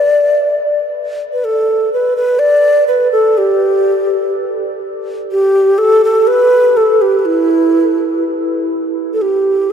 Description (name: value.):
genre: chinese traditional.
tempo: 61 BPM.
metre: 2/4.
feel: rubato.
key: D zhi mode.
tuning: A4 = 439 Hz.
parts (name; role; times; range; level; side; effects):
breathy mellow xiao; solo; 0.0-9.7 s; E4 to D5; -11 LUFS; equal; none.
room: wet huge ambient reverb, RT60 8.5 s.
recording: in a vast, echoing space.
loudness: -11 LUFS.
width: side -7 dB against mid.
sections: 0.0-1.4 A section; 1.4-9.7 B section.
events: none.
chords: none.